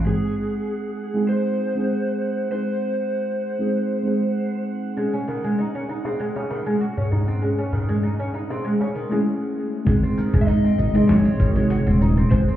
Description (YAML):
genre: organic downtempo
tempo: 98 BPM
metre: 4/4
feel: swing 53% on 16ths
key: unclear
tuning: A4 = 441 Hz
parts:
  - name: oud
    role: arpeggios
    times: 0.0-0.1, 5.0-12.6 s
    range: D#3 to F#4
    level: -25 LUFS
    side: right 1 dB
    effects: digital delay
  - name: drifting glass-harmonics texture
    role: texture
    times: 0.0-9.3 s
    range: F#5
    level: -42 LUFS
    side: right 8 dB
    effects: chorus, built-in reverb
  - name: overdriven slide guitar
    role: melody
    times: 0.1-4.6, 10.4-12.4 s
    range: G#4 to E5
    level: -28 LUFS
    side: equal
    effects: digital delay
  - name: muted felt-like synth keys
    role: accompaniment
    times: 0.1-12.6 s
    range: B#2 to G#4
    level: -24 LUFS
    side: equal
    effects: chorus, sidechain pumping, digital delay
  - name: darbuka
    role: percussion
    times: 5.3-8.9 s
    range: none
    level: -26 LUFS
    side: left 1 dB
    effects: none
  - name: smooth gliding synth bass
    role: bass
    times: 9.9-12.4 s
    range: D#1 to G#2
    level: -19 LUFS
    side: right 1 dB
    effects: sidechain pumping
  - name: dusty soul sampler-style drum kit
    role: drums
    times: 9.9-12.6 s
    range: cabasa, hi-hat, snare drum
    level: -26 LUFS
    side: right 1 dB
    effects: small room ambience
  - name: electronic kick drum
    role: drums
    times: 9.9-12.4 s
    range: none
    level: -20 LUFS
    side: equal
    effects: small room ambience
room: light reverb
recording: heard muffled through a wall, club reverb, EQ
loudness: -19 LUFS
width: side -12 dB against mid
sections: 0.1-9.9 A section; 9.9-12.6 B section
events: stop 9.3-9.9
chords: 0.1 G#; 5.0 F#5; 7.4 Amaj7; 9.9 G#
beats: | 0.07 0.69 1.30 1.91 | 2.52 3.13 3.75 4.36 | 4.97 5.58 6.20 6.81 | 7.42 8.03 8.64 9.26 | 9.87 10.48 11.09 11.71 | 12.32